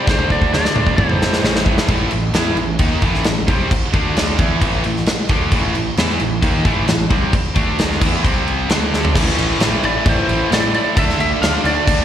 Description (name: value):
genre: hard rock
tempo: 132 BPM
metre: 4/4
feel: straight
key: A minor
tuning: A4 = 444 Hz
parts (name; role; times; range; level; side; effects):
- lightly driven lead guitar; melody; 0.0-1.6, 9.8-12.0 s; C5 to F5; -20 LUFS; right 1 dB; slapback echo
- cranked stack guitar; riff; 0.0-12.0 s; A2 to E4; -23 LUFS; left 10 dB; overdrive
- tight distorted guitar; riff; 0.0-12.0 s; A2 to E4; -22 LUFS; right 10 dB; distortion, slapback echo
- distorted electric guitar; riff; 0.1-12.0 s; A2 to E4; -26 LUFS; right 1 dB; none
- fuzz picked electric bass; bass; 0.1-12.0 s; A1 to A2; -22 LUFS; equal; overdrive
- big rock drum kit; drums; 0.1-12.0 s; crash cymbal, kick drum, snare drum, toms; -18 LUFS; equal; none
room: light reverb, studio reverb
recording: live gig heard through the venue's PA, recital hall reverb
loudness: -14 LUFS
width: side -10 dB against mid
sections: 0.0-1.9 A section; 1.9-9.1 B section; 9.1-12.0 A section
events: drum fill 0.1-1.9, 8.9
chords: 0.1 D5; 1.0 Am; 3.9 D5; 4.4 Am; 7.6 D5; 8.0 E5; 8.2 C5; 8.7 D5; 9.1 Am; 11.0 D5